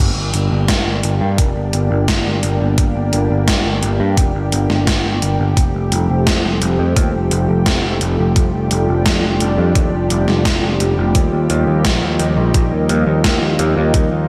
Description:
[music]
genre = synthwave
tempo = 86 BPM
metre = 4/4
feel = straight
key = G minor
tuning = A4 = 440 Hz
[part]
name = lush unison pad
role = sustained chords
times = 0.0-14.3 s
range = F3 to G4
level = -22 LUFS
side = equal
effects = chorus, sidechain pumping
[part]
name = picked electric bass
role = bass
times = 0.0-14.3 s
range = F1 to G2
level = -20 LUFS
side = equal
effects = sidechain pumping
[part]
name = gated 80s digital drum machine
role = drums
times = 0.3-14.1 s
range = hi-hat, snare drum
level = -22 LUFS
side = equal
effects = gated reverb, gated reverb snare, overdrive, slapback echo
[part]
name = electronic kick drum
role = drums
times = 0.7-14.1 s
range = none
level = -19 LUFS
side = equal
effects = overdrive
[sound]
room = moderate lush hall reverb, RT60 2.8 s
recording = big arena sound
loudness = -16 LUFS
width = mono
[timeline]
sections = 0.0-14.3 A section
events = none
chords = 0.0 Gm; 5.6 Fadd9; 11.2 Ebadd9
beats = 0.69 1.38 2.08 | 2.78 3.48 4.17 4.87 | 5.57 6.27 6.96 7.66 | 8.36 9.06 9.76 10.45 | 11.15 11.85 12.55 13.24 | 13.94

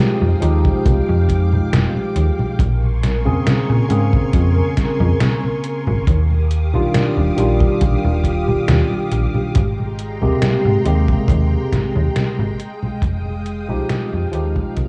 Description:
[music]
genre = vaporwave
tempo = 69 BPM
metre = 4/4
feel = swing 53% on 16ths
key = Eb major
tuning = A4 = 441 Hz
[part]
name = barky tine electric piano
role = accompaniment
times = 0.0-14.9 s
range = C3 to Ab4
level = -23 LUFS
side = equal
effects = overdrive, analog chorus, vintage 12-bit sampler grit, tape echo
[part]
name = soft string machine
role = sustained chords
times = 0.0-14.9 s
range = Ab3 to F6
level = -29 LUFS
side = equal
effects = ensemble chorus
[part]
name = slap-like FM bass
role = bass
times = 0.2-14.9 s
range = Eb1 to Bb2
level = -20 LUFS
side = equal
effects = none
[part]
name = detuned 8-bit digital drum machine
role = drums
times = 0.2-14.9 s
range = congas, hi-hat, snare drum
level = -24 LUFS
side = equal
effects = gated reverb
[part]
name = kick drum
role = drums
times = 0.7-14.9 s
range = none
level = -20 LUFS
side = equal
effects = none
[sound]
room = light reverb, digital ambience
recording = cassette tape, small room ambience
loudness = -17 LUFS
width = mono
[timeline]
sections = 0.0-14.9 A section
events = fade-out 10.7-14.9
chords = 0.0 Fm9; 2.6 Bbm9; 6.1 Ebmaj9; 9.6 Abmaj9; 12.6 Fm9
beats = 0.85 1.72 | 2.59 3.46 4.33 5.20 | 6.07 6.94 7.81 8.68 | 9.55 10.42 11.29 12.16 | 13.03 13.90 14.77

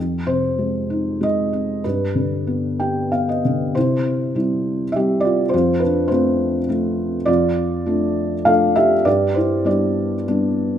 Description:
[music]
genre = classical, lyrical solo piano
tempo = 89-104 BPM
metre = 3/4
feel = rubato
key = C major from 3.8 s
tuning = A4 = 440 Hz
[part]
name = felt-muted upright piano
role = solo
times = 0.0-10.8 s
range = F2 to G5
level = -17 LUFS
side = equal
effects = none
[sound]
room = light reverb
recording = none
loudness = -17 LUFS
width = side -10 dB against mid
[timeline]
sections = 0.0-3.8 A section; 3.8-10.8 B section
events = felt piano fill 2.5-3.8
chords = 0.0 Fm7; 1.8 G; 3.8 C; 5.5 F; 7.3 Dm/F; 9.1 G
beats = 0.59 1.22 | 1.84 2.47 3.13 | 3.76 4.36 4.95 | 5.53 6.12 6.70 | 7.28 7.87 8.46 | 9.06 9.67 10.29

